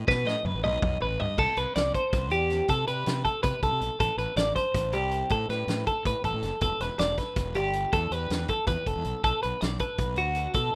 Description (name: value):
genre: math rock and midwest emo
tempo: 321 BPM (eighths)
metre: 7/8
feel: straight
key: unclear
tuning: A4 = 440 Hz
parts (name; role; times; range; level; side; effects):
- fuzz fingered electric bass; bass; 0.0-10.7 s; E1 to C3; -34 LUFS; equal; overdrive
- twelve-string electric guitar; arpeggios; 0.1-10.7 s; F#4 to D#5; -30 LUFS; equal; digital delay
- loose indie drum kit; drums; 0.1-10.6 s; crash cymbal, hi-hat, kick drum, snare drum, toms; -34 LUFS; equal; none
room: little or no reverb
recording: rough home demo mix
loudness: -28 LUFS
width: mono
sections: 0.0-1.4 A section; 1.4-10.8 B section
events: drum fill 0.1-1.4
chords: 0.0 B7; 1.4 Cmaj7(no3); 4.0 Am7; 6.6 Em; 9.2 Bm7